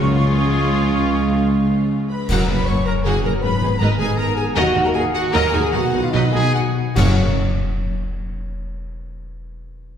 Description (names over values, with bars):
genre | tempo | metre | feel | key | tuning
cinematic, heroic adventure film score | 94-107 BPM (dotted quarters) | 12/8 | straight | F# major | A4 = 440 Hz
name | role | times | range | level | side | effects
rich symphonic violin section | melody | 0.0-7.2 s | E#4 to F#5 | -29 LUFS | left 2 dB | none
bright small flute group | second line | 0.0-7.2 s | D#5 to C#6 | -29 LUFS | equal | none
warm cor anglais | second line | 0.0-2.1 s | E#5 | -32 LUFS | right 1 dB | none
warm symphonic violin section | second line | 0.0-7.2 s | C#4 to C#6 | -30 LUFS | left 2 dB | none
rich symphonic viola section | accompaniment | 0.0-7.2 s | C#3 to B4 | -28 LUFS | right 1 dB | none
dark trombone section | sustained chords | 0.0-7.1 s | C#3 to C#4 | -30 LUFS | right 4 dB | none
warm French horn section | sustained chords | 0.0-7.1 s | C#4 to C#5 | -25 LUFS | left 1 dB | none
concert harp | arpeggios | 0.0-7.2 s | F#2 to F#5 | -27 LUFS | left 5 dB | none
dark trumpet | stabs | 0.0-7.1 s | C#4 to C#5 | -28 LUFS | right 1 dB | none
dark symphonic cello section | bass | 0.0-7.2 s | C#2 to B2 | -25 LUFS | right 2 dB | none
mellow tuba | bass | 0.0-7.1 s | F#1 to D#2 | -24 LUFS | right 1 dB | none
warm symphonic double bass section | bass | 0.0-7.2 s | F#1 to D#2 | -24 LUFS | right 1 dB | none
timpani | percussion | 0.0-0.5, 7.0-7.2 s | F#2 to C#3 | -24 LUFS | left 1 dB | none
clash cymbals and concert bass drum | percussion | 2.3-3.0, 7.0-7.7 s | none | -26 LUFS | equal | none
room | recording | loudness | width
wet scoring stage reverb, RT60 1.9 s | heard from further back in the room | -16 LUFS | side -8 dB against mid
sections
0.0-2.3 A section; 2.3-7.0 B section; 7.0-9.4 C section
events
band accent 2.3-2.7, 7.0-7.4; slowing down 3.1-7.0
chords
0.0 C#; 2.3 F#; 3.4 G#m; 4.6 D#m; 5.7 B; 7.0 F#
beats
0.54 1.13 1.71 | 2.30 2.87 3.44 4.00 | 4.57 5.14 5.73 6.34 | 6.96 7.57